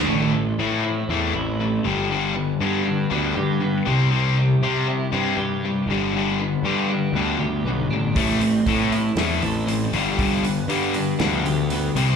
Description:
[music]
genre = quiet-loud alternative rock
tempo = 119 BPM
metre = 4/4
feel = straight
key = unclear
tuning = A4 = 440 Hz
[part]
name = distorted electric guitar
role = riff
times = 0.0-12.2 s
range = G2 to C4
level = -23 LUFS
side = left 10 dB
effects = overdrive
[part]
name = fuzz picked electric bass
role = bass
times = 0.0-12.2 s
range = G1 to C3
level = -23 LUFS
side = right 1 dB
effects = overdrive
[part]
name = twelve-string electric guitar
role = arpeggios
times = 0.1-12.2 s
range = G2 to A4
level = -26 LUFS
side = right 5 dB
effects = lush chorus
[part]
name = loose indie drum kit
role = drums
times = 8.2-12.1 s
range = hi-hat, kick drum, snare drum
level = -28 LUFS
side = right 1 dB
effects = none
[sound]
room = little or no reverb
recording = live gig heard through the venue's PA, club reverb, lossy compression artefacts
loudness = -19 LUFS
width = side -6 dB against mid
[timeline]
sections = 0.1-12.2 A section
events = half time 0.1-12.2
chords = 0.1 Am; 1.8 G; 3.9 C; 5.9 G; 8.2 Am; 9.9 G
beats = | 0.08 0.59 1.09 1.60 | 2.10 2.61 3.11 3.62 | 4.12 4.63 5.13 5.64 | 6.15 6.65 7.16 7.66 | 8.17 8.67 9.18 9.68 | 10.19 10.69 11.20 11.70

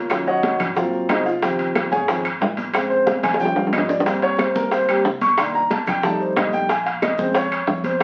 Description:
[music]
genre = Afro-Cuban jazz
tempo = 182 BPM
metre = 4/4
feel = straight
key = Bb dorian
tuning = A4 = 441 Hz
[part]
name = warm grand piano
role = accompaniment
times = 0.0-8.0 s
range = Db3 to Db6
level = -22 LUFS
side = equal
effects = none
[part]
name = upright bass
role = bass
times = 0.0-8.0 s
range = Ab1 to F2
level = -38 LUFS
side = equal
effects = none
[part]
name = bongos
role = percussion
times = 0.1-8.0 s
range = none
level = -26 LUFS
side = equal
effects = none
[part]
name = claves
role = percussion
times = 0.1-8.0 s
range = none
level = -33 LUFS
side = equal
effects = none
[part]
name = congas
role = percussion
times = 0.1-8.0 s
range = none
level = -32 LUFS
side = equal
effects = none
[part]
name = maracas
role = percussion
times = 0.1-8.0 s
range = none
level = -50 LUFS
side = equal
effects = none
[part]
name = timbales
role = percussion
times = 0.1-8.0 s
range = none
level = -30 LUFS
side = equal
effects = none
[sound]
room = wet studio ambience, RT60 0.5 s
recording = very old 78 rpm record, vinyl crackle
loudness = -20 LUFS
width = mono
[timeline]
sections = 0.0-8.0 A section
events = grand piano solo 0.0-8.0; drum fill 3.2-4.1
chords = 0.1 Ebm7; 0.8 Ab7; 1.4 Dbmaj7; 2.7 Bbm7; 3.4 Eb7; 4.1 Abmaj7; 5.4 Cm7; 6.0 F7; 6.7 Bbm7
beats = | 0.10 0.43 0.76 1.09 | 1.42 1.75 2.08 2.41 | 2.74 3.07 3.40 3.73 | 4.06 4.39 4.72 5.05 | 5.38 5.71 6.04 6.37 | 6.70 7.03 7.36 7.69 | 8.02

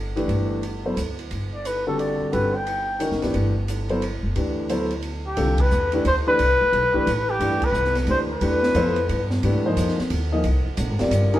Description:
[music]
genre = modal jazz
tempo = 178 BPM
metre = 3/4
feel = swing 64% on 8ths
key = G major, C major from 5.4 s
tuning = A4 = 440 Hz
[part]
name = upright bass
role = bass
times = 0.0-11.4 s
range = F#1 to Ab2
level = -25 LUFS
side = equal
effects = none
[part]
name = warm concert grand piano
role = accompaniment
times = 0.2-11.4 s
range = D3 to Eb5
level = -25 LUFS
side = left 1 dB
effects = none
[part]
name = open jazz drum kit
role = drums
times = 0.2-11.4 s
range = hi-hat, kick drum, ride cymbal, snare drum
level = -31 LUFS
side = right 2 dB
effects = none
[part]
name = breathy trumpet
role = melody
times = 1.5-3.2, 5.3-9.3, 11.3-11.4 s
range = G4 to G5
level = -22 LUFS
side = left 1 dB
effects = none
[sound]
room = wet stone room reverb, RT60 1.4 s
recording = band playing live in one room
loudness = -20 LUFS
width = side -14 dB against mid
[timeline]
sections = 0.0-5.4 A section; 5.4-11.4 B section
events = band accent 5.5, 7.6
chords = 0.0 Gmaj9; 5.4 Cmaj9; 9.4 Abmaj9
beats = | 0.29 0.63 0.97 | 1.31 1.65 1.99 | 2.33 2.67 3.00 | 3.34 3.68 4.02 | 4.36 4.70 5.04 | 5.37 5.71 6.05 | 6.39 6.73 7.06 | 7.40 7.74 8.08 | 8.41 8.75 9.09 | 9.43 9.76 10.10 | 10.44 10.77 11.11

